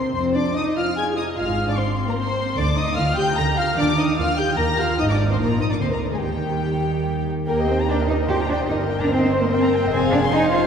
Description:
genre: quick classical-period movement for string orchestra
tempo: 148 BPM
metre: 3/4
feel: straight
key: Eb major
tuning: A4 = 440 Hz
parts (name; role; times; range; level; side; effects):
- dark studio violin section; melody; 0.0-10.7 s; Bb4 to Bb6; -27 LUFS; left 3 dB; none
- warm chamber violin section; second line; 0.0-10.7 s; G4 to C6; -26 LUFS; left 2 dB; none
- dark symphonic viola section; accompaniment; 0.0-10.7 s; G3 to C5; -24 LUFS; equal; none
- warm symphonic cello section; bass; 0.0-10.7 s; F2 to G4; -24 LUFS; right 1 dB; none
- warm symphonic double bass section; bass; 0.0-10.7 s; F1 to Eb2; -26 LUFS; right 2 dB; none
room: wet church reverb, RT60 2.8 s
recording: heard from further back in the room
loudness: -18 LUFS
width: side -7 dB against mid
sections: 0.0-7.5 A section; 7.5-10.7 A section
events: none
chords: 0.2 Fm7; 1.4 Ab6; 2.6 Ebmaj9/D; 3.8 Ebmaj9; 5.0 Ab; 5.4 Bbadd11; 5.8 Bb/D; 6.2 Eb; 8.7 Eb/G; 9.9 Fm

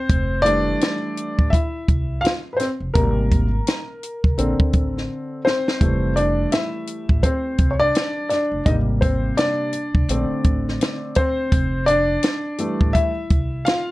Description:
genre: hip hop, jazz-hop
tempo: 84 BPM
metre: 4/4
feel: swing 60% on 16ths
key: F major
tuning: A4 = 441 Hz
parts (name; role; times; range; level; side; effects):
- dark grand piano; accompaniment; 0.0-13.9 s; C3 to F5; -21 LUFS; left 1 dB; none
- upright bass; bass; 0.1-13.6 s; F1 to C2; -24 LUFS; equal; none
- compact cocktail drum kit; drums; 0.1-13.9 s; hi-hat, kick drum, snare drum; -20 LUFS; equal; vintage 12-bit sampler grit
room: moderate small room ambience, RT60 0.5 s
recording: dark, warm production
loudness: -18 LUFS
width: side -18 dB against mid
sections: 0.0-13.9 A section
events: grand piano solo 0.0-13.9; drum fill 5.1-5.8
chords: 0.1 Fmaj9; 3.0 Abmaj9; 4.4 Bbmaj9; 5.8 Fmaj9; 8.7 Abmaj9; 10.1 Bbmaj9; 11.5 Fmaj9

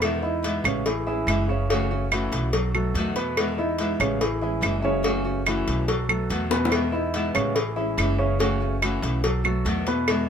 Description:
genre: latin, Cuban son and guajira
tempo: 143 BPM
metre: 4/4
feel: straight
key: E major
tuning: A4 = 440 Hz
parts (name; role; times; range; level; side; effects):
- nylon-string guitar; accompaniment; 0.0-10.3 s; B2 to F#4; -28 LUFS; left 1 dB; none
- upright bass; bass; 0.0-10.3 s; F#1 to E2; -28 LUFS; equal; none
- claves; percussion; 0.0-10.3 s; none; -24 LUFS; right 4 dB; none
- cowbell and bongos; percussion; 0.0-10.3 s; none; -28 LUFS; left 3 dB; none
- dark grand piano; arpeggios; 0.2-10.2 s; B2 to C#5; -27 LUFS; right 1 dB; none
room: light reverb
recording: none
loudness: -22 LUFS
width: side -8 dB against mid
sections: 0.0-10.3 A section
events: drum fill 6.5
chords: 0.0 Emaj7; 0.9 Amaj7; 1.7 F#m7; 2.5 B7; 3.4 Emaj7; 4.2 Amaj7; 5.0 F#m7; 5.9 B7; 6.7 Emaj7; 7.6 Amaj7; 8.4 F#m7; 9.2 B7

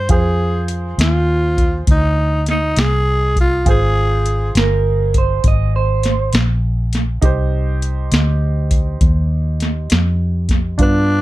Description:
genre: slow blues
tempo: 67 BPM (dotted quarters)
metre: 12/8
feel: straight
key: C minor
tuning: A4 = 440 Hz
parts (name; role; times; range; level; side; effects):
- growling tenor saxophone; melody; 0.0-4.5, 10.8-11.2 s; D4 to C5; -19 LUFS; equal; none
- bright upright piano; accompaniment; 0.0-11.2 s; B3 to C5; -26 LUFS; right 5 dB; none
- vintage muted fingered electric bass; bass; 0.0-11.2 s; G1 to G2; -16 LUFS; equal; none
- soft vintage rhythm box; drums; 0.1-10.9 s; hi-hat, kick drum, snare drum; -16 LUFS; equal; overdrive
- electric guitar through a small old amp; second line; 4.6-6.3 s; Bb4 to Eb5; -19 LUFS; right 9 dB; none
room: little or no reverb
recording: dark, warm production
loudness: -14 LUFS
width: side -17 dB against mid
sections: 0.0-11.2 A section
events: none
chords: 0.0 Cm

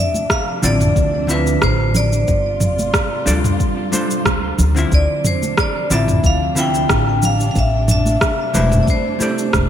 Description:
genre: sunset chillout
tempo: 91 BPM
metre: 4/4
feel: swing 54% on 16ths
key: unclear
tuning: A4 = 440 Hz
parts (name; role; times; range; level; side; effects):
- vibraphone with hard mallets; melody; 0.0-9.7 s; B4 to G5; -21 LUFS; left 2 dB; digital delay
- muted studio string section; sustained chords; 0.0-9.7 s; C3 to F4; -27 LUFS; equal; none
- congas; percussion; 0.1-9.3 s; none; -26 LUFS; right 2 dB; none
- deep house drum kit; drums; 0.2-9.7 s; cabasa, rim click, toms; -21 LUFS; right 1 dB; small room ambience, gated reverb
- electronic kick drum; drums; 0.3-9.7 s; none; -19 LUFS; equal; small room ambience
- hollow-body jazz guitar; accompaniment; 0.6-9.7 s; D3 to E5; -21 LUFS; moving between left 2 dB and right 4 dB; auto-pan, digital delay
- upright bass; bass; 0.6-9.7 s; E1 to D2; -18 LUFS; equal; none
room: moderate plate reverb, RT60 2.8 s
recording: bright 1980s-style digital production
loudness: -14 LUFS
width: side -10 dB against mid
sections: 0.0-9.7 A section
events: none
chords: 0.0 Dm7; 2.3 G7sus4; 4.6 Dm7; 7.6 Am11

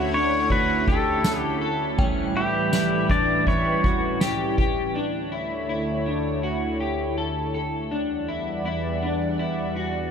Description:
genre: dream pop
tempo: 81 BPM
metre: 4/4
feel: straight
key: D major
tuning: A4 = 441 Hz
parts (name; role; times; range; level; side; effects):
- pedal steel guitar; melody; 0.0-4.2 s; F#4 to D5; -26 LUFS; left 1 dB; ping-pong delay
- mellow electric guitar; accompaniment; 0.0-5.5 s; A2 to F#4; -31 LUFS; right 5 dB; harmonic tremolo, lush chorus
- lush unison pad; sustained chords; 0.0-10.1 s; D2 to F#5; -27 LUFS; right 1 dB; chorus
- electric guitar at the edge of break-up; arpeggios; 0.0-10.1 s; C#4 to A4; -28 LUFS; left 4 dB; analog chorus, ping-pong delay
- soft-mallet drum kit; drums; 0.1-4.8 s; kick drum, ride cymbal, snare drum, tambourine; -26 LUFS; equal; none
- synth chime; texture; 2.0-3.7 s; G5; -39 LUFS; right 1 dB; ensemble chorus, tremolo, ping-pong delay
room: moderate huge ambient reverb, RT60 7.1 s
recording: none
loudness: -21 LUFS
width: side -7 dB against mid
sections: 0.0-4.9 A section; 4.9-10.1 B section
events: none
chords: 0.0 Dmaj7; 2.0 A7; 4.9 Dmaj7; 7.9 Em7

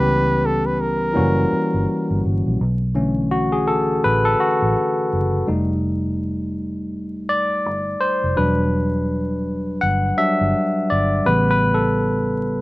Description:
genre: R&B, neo-soul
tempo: 83 BPM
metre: 4/4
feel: swing 59% on 16ths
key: unclear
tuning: A4 = 440 Hz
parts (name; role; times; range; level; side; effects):
- warm flugelhorn; melody; 0.0-2.2 s; A4 to B4; -21 LUFS; right 1 dB; slapback echo
- barky tine electric piano; accompaniment; 0.0-12.6 s; C#3 to F#5; -19 LUFS; left 1 dB; slapback echo
- vintage muted fingered electric bass; bass; 0.0-12.6 s; E1 to C#2; -22 LUFS; equal; none
room: little or no reverb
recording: recorded outdoors, with no room sound, vinyl crackle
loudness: -17 LUFS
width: side -19 dB against mid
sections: 0.0-2.6 A section; 2.6-12.6 B section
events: tine electric piano solo 2.6-12.6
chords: 0.0 C#m7b5; 1.1 F#7b9; 2.6 Bm11; 5.5 F9; 8.4 Em7; 11.3 A9

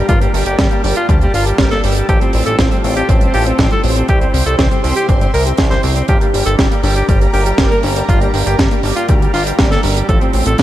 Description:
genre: italo disco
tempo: 120 BPM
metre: 4/4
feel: straight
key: G dorian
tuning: A4 = 440 Hz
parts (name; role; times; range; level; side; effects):
- breathy alto saxophone; melody; 0.0-10.6 s; G3 to C5; -18 LUFS; equal; digital delay
- lush unison pad; sustained chords; 0.0-10.6 s; G4 to C6; -24 LUFS; right 2 dB; chorus, phaser
- wide unison pluck; arpeggios; 0.0-10.6 s; E3 to C5; -25 LUFS; left 3 dB; digital delay
- barky tine electric piano; stabs; 0.0-10.6 s; G2 to C5; -24 LUFS; right 2 dB; ensemble chorus
- chorused synth bass; bass; 0.0-10.6 s; G1 to D2; -17 LUFS; equal; none
- electronic kick drum; drums; 0.1-10.6 s; none; -15 LUFS; equal; none
- tight funk drum kit; drums; 0.1-10.6 s; hi-hat, snare drum; -19 LUFS; right 1 dB; none
room: light reverb, small room ambience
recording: dark, warm production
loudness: -11 LUFS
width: side -13 dB against mid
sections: 0.0-10.6 A section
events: none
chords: 0.0 Gm; 2.1 Fadd9/A; 4.1 C; 6.1 Gm; 10.1 Fadd9/A

